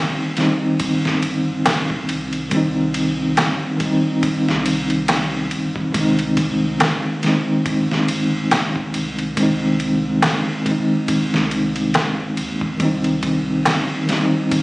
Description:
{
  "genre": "trip hop",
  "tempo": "70 BPM",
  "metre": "4/4",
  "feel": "swing 57% on 16ths",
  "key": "C minor",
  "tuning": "A4 = 441 Hz",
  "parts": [
    { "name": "bell-like tine electric piano", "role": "accompaniment", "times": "0.0-14.6 s", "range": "Eb3 to Eb4", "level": "-18 LUFS", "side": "equal", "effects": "tremolo, low-pass filter, tape echo" },
    { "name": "soft dub sub bass", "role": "bass", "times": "0.0-14.6 s", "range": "G1 to Eb2", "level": "-31 LUFS", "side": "equal", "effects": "tube saturation" },
    { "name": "trip hop sampler-style drum kit", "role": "drums", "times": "0.4-14.6 s", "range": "kick drum, ride cymbal, snare drum", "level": "-22 LUFS", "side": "equal", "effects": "none" },
    { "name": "darbuka", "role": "percussion", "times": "1.7-13.9 s", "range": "none", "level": "-21 LUFS", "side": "equal", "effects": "none" }
  ],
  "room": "light reverb, digital ambience",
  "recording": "recorded on a phone in the room, studio reverb, vinyl crackle",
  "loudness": "-16 LUFS",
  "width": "side -22 dB against mid",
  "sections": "0.0-14.6 A section",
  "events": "none",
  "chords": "0.0 Cm; 5.9 Ab; 12.8 Cm"
}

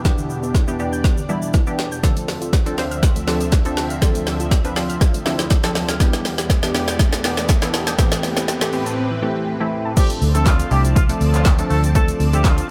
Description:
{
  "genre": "dance-pop",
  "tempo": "121 BPM",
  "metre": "4/4",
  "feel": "straight",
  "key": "D dorian",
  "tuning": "A4 = 440 Hz",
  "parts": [
    { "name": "funky polysynth comp", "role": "accompaniment", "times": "0.0-12.6 s", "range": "E3 to C5", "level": "-26 LUFS", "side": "equal", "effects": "chorus, sidechain pumping" },
    { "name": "lush unison pad", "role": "sustained chords", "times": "0.0-12.7 s", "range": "D2 to A5", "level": "-30 LUFS", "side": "equal", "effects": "chorus, phaser, sidechain pumping" },
    { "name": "soft round pluck", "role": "arpeggios", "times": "0.1-9.9 s", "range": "E2 to G6", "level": "-34 LUFS", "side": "equal", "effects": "none" },
    { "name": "deep house drum kit", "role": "drums", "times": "0.1-12.7 s", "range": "crash cymbal, handclaps, hi-hat, kick drum, shaker, snare drum", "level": "-20 LUFS", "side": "equal", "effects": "none" },
    { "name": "riser", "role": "sound effects", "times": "5.2-9.0 s", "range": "none", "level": "-36 LUFS", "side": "equal", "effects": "none" },
    { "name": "warm horn section", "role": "melody", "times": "10.0-12.7 s", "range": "F4 to A4", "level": "-28 LUFS", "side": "equal", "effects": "sidechain pumping" },
    { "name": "vintage muted fingered electric bass", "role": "bass", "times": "10.2-12.6 s", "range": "C2 to D2", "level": "-20 LUFS", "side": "equal", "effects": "sidechain pumping" }
  ],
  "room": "digital ambience",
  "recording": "none",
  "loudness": "-18 LUFS",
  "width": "mono",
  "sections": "0.0-10.0 A section; 10.0-12.7 B section",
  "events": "build-up 0.0-10.0; drum fill 0.0-9.0; drop 10.0-12.7",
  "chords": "0.0 Em7; 2.0 Dm7; 6.0 Em7; 8.0 Am7; 10.0 Dm7"
}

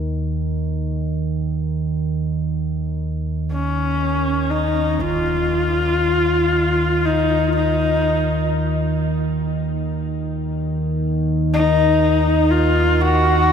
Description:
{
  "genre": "dark ambient drone",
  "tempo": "free time",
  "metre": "none",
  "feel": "none",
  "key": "unclear",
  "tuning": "A4 = 441 Hz",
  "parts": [
    { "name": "deep rumbling drone", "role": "drone", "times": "0.0-13.5 s", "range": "Eb2 to Eb3", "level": "-20 LUFS", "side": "right 1 dB", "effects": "built-in reverb" },
    { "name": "dark horsehead fiddle", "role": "melody", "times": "3.5-13.5 s", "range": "Db4 to Gb4", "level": "-19 LUFS", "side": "left 2 dB", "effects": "ping-pong delay" },
    { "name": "impact", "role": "percussion", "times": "5.0-5.2 s", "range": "none", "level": "-39 LUFS", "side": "right 1 dB", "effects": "none" }
  ],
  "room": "moderate cathedral reverb, RT60 6.6 s",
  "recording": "none",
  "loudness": "-17 LUFS",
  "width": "side -7 dB against mid",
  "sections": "0.0-5.0 A section; 5.0-13.5 B section",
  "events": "none",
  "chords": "none"
}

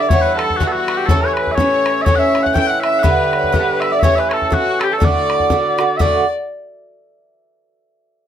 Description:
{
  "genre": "celtic folk, Celtic polka",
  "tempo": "122 BPM",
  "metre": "2/4",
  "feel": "swing 57% on 8ths",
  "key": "D major",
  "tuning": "A4 = 440 Hz",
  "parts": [
    { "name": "mellow small bagpipes", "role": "melody", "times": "0.0-6.3 s", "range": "F#4 to G5", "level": "-18 LUFS", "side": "equal", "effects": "none" },
    { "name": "concert harp", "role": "second line", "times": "0.0-7.1 s", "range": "F#4 to G5", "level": "-23 LUFS", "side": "right 3 dB", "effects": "none" },
    { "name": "warm violin", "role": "second line", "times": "0.0-6.3 s", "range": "F#4 to G5", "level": "-21 LUFS", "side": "left 5 dB", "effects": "none" },
    { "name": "Irish bouzouki", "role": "accompaniment", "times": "0.0-6.2 s", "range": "G2 to G4", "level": "-20 LUFS", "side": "right 5 dB", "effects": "none" },
    { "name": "bodhran", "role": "percussion", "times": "0.1-6.3 s", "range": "none", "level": "-18 LUFS", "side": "left 2 dB", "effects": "none" }
  ],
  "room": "light reverb",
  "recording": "none",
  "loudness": "-13 LUFS",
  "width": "side -9 dB against mid",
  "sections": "0.0-6.0 A section",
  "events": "none",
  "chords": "0.1 Em/G; 1.1 A; 3.1 G; 4.0 A7; 5.0 D"
}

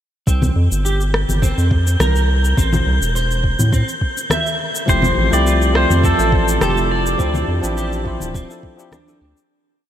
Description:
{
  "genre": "sunset chillout",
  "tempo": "104 BPM",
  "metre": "4/4",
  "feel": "straight",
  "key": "D minor",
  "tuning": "A4 = 441 Hz",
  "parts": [
    { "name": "clean electric guitar", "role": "arpeggios", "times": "0.3-9.4 s", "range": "C4 to E5", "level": "-26 LUFS", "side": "right 1 dB", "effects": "ensemble chorus, analog delay" },
    { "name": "round analog bass", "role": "bass", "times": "0.3-9.3 s", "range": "D1 to A2", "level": "-17 LUFS", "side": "equal", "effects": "none" },
    { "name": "electronic kick drum", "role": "drums", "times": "0.3-8.8 s", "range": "none", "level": "-18 LUFS", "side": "equal", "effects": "none" },
    { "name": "electronic shaker and rim click", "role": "drums", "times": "0.3-9.5 s", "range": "none", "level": "-26 LUFS", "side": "left 1 dB", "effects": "none" },
    { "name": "wind-like tuned noise texture", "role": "texture", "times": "0.7-9.5 s", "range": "G6", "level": "-28 LUFS", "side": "equal", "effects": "built-in reverb" },
    { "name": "congas", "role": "percussion", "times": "0.4-9.0 s", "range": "none", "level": "-26 LUFS", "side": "left 1 dB", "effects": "none" },
    { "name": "pedal steel guitar", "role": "melody", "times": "4.9-7.7 s", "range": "A4 to D5", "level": "-20 LUFS", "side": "equal", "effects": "wide subtle chorus, ping-pong delay" },
    { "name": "bell-like tine electric piano", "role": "accompaniment", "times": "4.9-9.2 s", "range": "F3 to E5", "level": "-21 LUFS", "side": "moving between left 6 dB and right 2 dB", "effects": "auto-pan, analog delay" }
  ],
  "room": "moderate huge ambient reverb, RT60 7.3 s",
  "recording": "dreamy mix soaked in reverb",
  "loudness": "-14 LUFS",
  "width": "side -11 dB against mid",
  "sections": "0.3-9.5 groove",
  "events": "fade-out 6.4-9.5",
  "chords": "0.3 Csus4; 2.6 Am7; 4.9 Fmaj9; 7.2 Dm11"
}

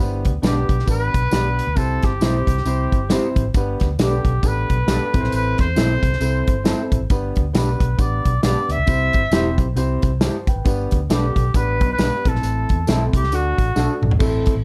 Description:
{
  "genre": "uptempo 1960s-style soul",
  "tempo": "135 BPM",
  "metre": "4/4",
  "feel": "swing 59% on 8ths",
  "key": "G major",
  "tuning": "A4 = 438 Hz",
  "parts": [
    { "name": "warm concert grand piano", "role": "accompaniment", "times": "0.0-14.5 s", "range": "A3 to A5", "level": "-28 LUFS", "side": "equal", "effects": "none" },
    { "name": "vintage muted fingered electric bass", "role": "bass", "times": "0.0-14.6 s", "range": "E1 to E2", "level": "-24 LUFS", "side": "equal", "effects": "none" },
    { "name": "natural country drum kit", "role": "drums", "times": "0.2-14.6 s", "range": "crash cymbal, hi-hat, kick drum, snare drum, toms", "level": "-22 LUFS", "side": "equal", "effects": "none" },
    { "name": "electric guitar through a small old amp", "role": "stabs", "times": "0.4-13.9 s", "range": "C4 to C5", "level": "-28 LUFS", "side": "equal", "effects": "lush chorus" },
    { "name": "tambourine", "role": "percussion", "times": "0.4-14.3 s", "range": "none", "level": "-42 LUFS", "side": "equal", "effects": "none" },
    { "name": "warm trumpet", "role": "melody", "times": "0.5-14.0 s", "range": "F#4 to E5", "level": "-26 LUFS", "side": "equal", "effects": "slapback echo" }
  ],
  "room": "light reverb",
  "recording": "dark, warm production",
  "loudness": "-19 LUFS",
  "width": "mono",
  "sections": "0.0-14.2 A section",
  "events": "drum fill 13.8-14.2",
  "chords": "0.0 G; 1.8 C; 3.5 G; 5.1 Am; 7.1 G; 8.9 C; 10.7 G; 12.2 Am; 13.3 D"
}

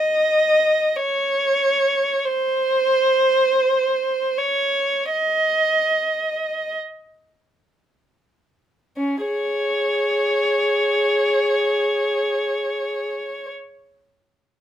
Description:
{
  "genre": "classical, free, expressive piece for unaccompanied violin",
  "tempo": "free time",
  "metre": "none",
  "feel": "none",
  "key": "unclear",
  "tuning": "A4 = 442 Hz",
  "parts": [
    { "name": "dark violin", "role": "solo", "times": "0.0-13.5 s", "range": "C#4 to D#5", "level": "-18 LUFS", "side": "equal", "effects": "none" }
  ],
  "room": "light reverb",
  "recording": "close, detailed microphones",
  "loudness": "-18 LUFS",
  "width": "side -10 dB against mid",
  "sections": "0.0-9.0 A section; 9.0-14.6 B section",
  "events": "slowing down 0.0-9.0",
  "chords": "none"
}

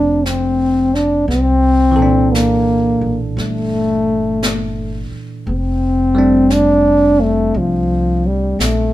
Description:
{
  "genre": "jazz ballad",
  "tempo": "58 BPM",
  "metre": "4/4",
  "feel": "swing 66% on 8ths",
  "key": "F major",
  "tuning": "A4 = 438 Hz",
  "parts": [
    { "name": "breathy trombone", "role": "melody", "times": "0.0-8.9 s", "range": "F3 to D4", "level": "-14 LUFS", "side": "left 1 dB", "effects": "none" },
    { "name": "bell-like tine electric piano", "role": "accompaniment", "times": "0.0-8.9 s", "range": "Bb2 to A4", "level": "-20 LUFS", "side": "right 3 dB", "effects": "none" },
    { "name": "upright bass", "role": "bass", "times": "0.0-8.9 s", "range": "F1 to C2", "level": "-20 LUFS", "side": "equal", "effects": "none" },
    { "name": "jazz brush drum kit", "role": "drums", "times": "0.3-8.9 s", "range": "brushed snare drum, hi-hat, snare drum", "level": "-24 LUFS", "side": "left 1 dB", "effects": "none" }
  ],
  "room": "light reverb",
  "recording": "minimal, uncompressed stereo recording",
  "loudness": "-12 LUFS",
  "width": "side -14 dB against mid",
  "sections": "0.0-8.9 A section",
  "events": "none",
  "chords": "0.0 Bbmaj9 (rootless); 1.3 C13; 5.5 F69"
}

